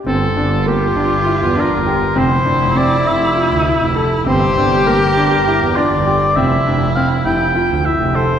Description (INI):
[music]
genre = contemporary instrumental, chamber music in an uneven meter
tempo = 200 BPM (eighths)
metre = 7/8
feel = straight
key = G dorian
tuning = A4 = 440 Hz
[part]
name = warm oboe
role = melody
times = 0.1-8.4 s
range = G4 to G5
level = -18 LUFS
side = left 1 dB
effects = none
[part]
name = rich viola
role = second line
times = 0.1-8.2 s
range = E4 to G4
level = -19 LUFS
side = equal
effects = none
[part]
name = warm baby grand piano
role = arpeggios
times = 0.1-8.3 s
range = Bb3 to A4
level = -20 LUFS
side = left 1 dB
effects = none
[part]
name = clear double bass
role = bass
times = 0.1-8.2 s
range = F1 to E2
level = -18 LUFS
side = right 2 dB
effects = none
[sound]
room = wet church reverb, RT60 3.0 s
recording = recorded in a church or concert hall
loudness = -12 LUFS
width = side -8 dB against mid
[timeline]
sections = 0.1-8.4 A section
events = none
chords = 0.1 Gm7; 2.2 Fmaj7(no3); 4.3 Gm7; 6.4 Fmaj7(no3)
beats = | 0.06 0.36 0.66 0.96 1.26 1.56 1.86 | 2.16 2.46 2.76 3.06 3.36 3.66 3.96 | 4.26 4.56 4.86 5.16 5.46 5.75 6.05 | 6.35 6.65 6.95 7.25 7.55 7.85 8.15